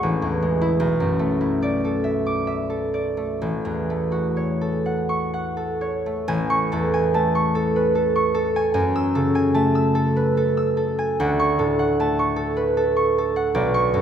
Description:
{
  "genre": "classical, solo harp piece",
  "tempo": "61-78 BPM",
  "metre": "3/4",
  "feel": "rubato",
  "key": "A major",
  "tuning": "A4 = 440 Hz",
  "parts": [
    { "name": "concert harp", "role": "solo", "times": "0.0-14.0 s", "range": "A1 to E6", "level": "-19 LUFS", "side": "equal", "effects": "none" }
  ],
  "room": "wet scoring stage reverb, RT60 1.8 s",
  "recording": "recorded in a church or concert hall",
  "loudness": "-19 LUFS",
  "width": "side -8 dB against mid",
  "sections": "0.0-6.3 A section; 6.3-14.0 A section",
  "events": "none",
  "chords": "0.0 Amaj7; 0.8 Bm11; 3.4 A6; 6.3 Amaj7; 8.8 F#m9; 11.2 Dmaj7"
}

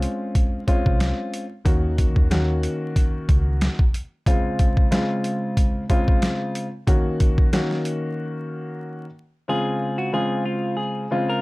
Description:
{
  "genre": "hip hop, boom-bap hip-hop",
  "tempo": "92 BPM",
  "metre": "4/4",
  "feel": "swing 55% on 16ths",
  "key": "Db major",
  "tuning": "A4 = 441 Hz",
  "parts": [
    { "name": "dark concert grand piano", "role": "accompaniment", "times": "0.0-11.4 s", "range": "Db3 to Gb4", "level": "-24 LUFS", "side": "left 1 dB", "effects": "cassette tape, high-pass filter, low-pass filter" },
    { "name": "deep dub fingered electric bass", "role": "bass", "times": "0.0-3.7 s", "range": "C2 to Eb2", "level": "-22 LUFS", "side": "equal", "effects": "none" },
    { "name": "boom bap sampler-style drum kit", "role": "drums", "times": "0.0-8.0 s", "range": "hi-hat, kick drum, snare drum", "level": "-19 LUFS", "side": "equal", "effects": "none" },
    { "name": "semi-hollow electric guitar", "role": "melody", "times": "9.5-11.4 s", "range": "F4 to Bb4", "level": "-27 LUFS", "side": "equal", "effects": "high-pass filter, low-pass filter" }
  ],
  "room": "light reverb",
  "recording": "dark, warm production, vinyl crackle",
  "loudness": "-19 LUFS",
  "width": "side -22 dB against mid",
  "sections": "0.0-9.5 A section; 9.5-11.4 B section",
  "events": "break 8.2-9.5",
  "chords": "0.0 Dbmaj7; 1.7 Ebm7; 4.3 Dbmaj7; 6.9 Ebm7; 9.5 Dbmaj7"
}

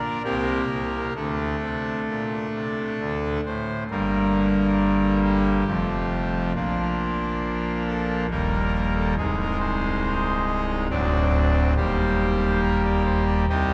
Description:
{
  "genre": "classical, chorale-style piece for pipe organ",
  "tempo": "68 BPM",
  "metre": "3/4",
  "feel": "rubato",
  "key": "G minor",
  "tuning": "A4 = 440 Hz",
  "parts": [
    { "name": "pipe organ, trumpet", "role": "solo", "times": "0.0-13.7 s", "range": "C1 to Eb5", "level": "-24 LUFS", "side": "equal", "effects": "none" }
  ],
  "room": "wet church reverb, RT60 3.6 s",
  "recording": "dark, warm production",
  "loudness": "-24 LUFS",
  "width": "mono",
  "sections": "0.0-3.9 A section; 3.9-13.7 B section",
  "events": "none",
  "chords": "0.2 C5; 1.2 D5; 3.9 Gm; 5.7 F; 6.6 Bb; 8.3 Eb; 9.2 Ab/C; 10.9 D7; 11.8 Eb"
}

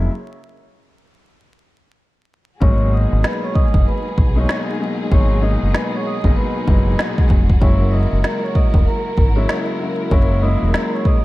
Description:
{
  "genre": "hip hop, boom-bap hip-hop",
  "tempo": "96 BPM",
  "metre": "4/4",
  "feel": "swing 62% on 16ths",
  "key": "G# minor",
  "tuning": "A4 = 439 Hz",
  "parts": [
    { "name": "dark baby grand piano", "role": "accompaniment", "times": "0.0-11.2 s", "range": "A#2 to E4", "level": "-23 LUFS", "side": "left 2 dB", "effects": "cassette tape, high-pass filter, low-pass filter" },
    { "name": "deep dub fingered electric bass", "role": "bass", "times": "0.0-10.7 s", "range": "E1 to B1", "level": "-17 LUFS", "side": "equal", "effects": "none" },
    { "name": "vibraphone with soft mallets", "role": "melody", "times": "2.6-11.2 s", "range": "A#4 to D#6", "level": "-26 LUFS", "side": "moving between left 1 dB and right 6 dB", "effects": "auto-pan, high-pass filter, low-pass filter, tape echo" },
    { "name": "warm studio string section", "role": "sustained chords", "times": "2.6-11.2 s", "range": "G#3 to A#4", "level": "-28 LUFS", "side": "equal", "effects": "high-pass filter, low-pass filter" },
    { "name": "organic electronic drum kit", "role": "drums", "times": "2.6-11.2 s", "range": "kick drum, snare drum", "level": "-16 LUFS", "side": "equal", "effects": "none" }
  ],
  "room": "light reverb, studio ambience",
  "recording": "vinyl crackle",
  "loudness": "-14 LUFS",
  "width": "side -18 dB against mid",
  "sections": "0.0-2.6 A section; 2.6-11.2 B section",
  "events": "break 0.1-2.6; hi-hats muted 2.6-11.2",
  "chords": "0.0 F#9; 2.6 G#m7; 7.6 F#9"
}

